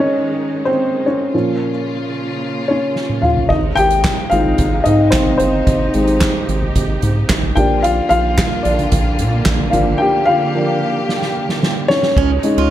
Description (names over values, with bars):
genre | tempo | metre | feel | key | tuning
piano-driven pop | 111 BPM | 4/4 | straight | unclear | A4 = 441 Hz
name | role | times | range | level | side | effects
dark upright piano | accompaniment | 0.0-12.7 s | Ab2 to G5 | -16 LUFS | left 1 dB | plate reverb
clear studio string section | sustained chords | 0.0-12.7 s | C3 to G4 | -24 LUFS | right 1 dB | none
soft-mallet drum kit | drums | 3.0-12.6 s | crash cymbal, handclaps, hi-hat, kick drum, snare drum, toms | -19 LUFS | right 1 dB | none
round analog bass | bass | 3.5-12.7 s | G1 to Bb2 | -19 LUFS | right 1 dB | none
picked steel-string acoustic guitar | riff | 12.2-12.7 s | Db4 to F4 | -20 LUFS | right 14 dB | none
room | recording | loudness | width
light reverb | none | -13 LUFS | side -12 dB against mid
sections
0.0-3.5 A section; 3.5-12.2 B section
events
upright piano solo 0.0-3.5, 3.5-12.2; drum fill 3.0-3.5, 11.1-12.2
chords
0.0 Ab; 1.3 Bbm; 3.5 Ab; 7.6 Bb; 12.2 Dbsus2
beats
0.25 0.79 | 1.33 1.88 2.42 2.96 | 3.50 4.05 4.59 5.13 | 5.67 6.21 6.76 7.30 | 7.84 8.38 8.92 9.46 | 10.01 10.55 11.09 11.63 | 12.17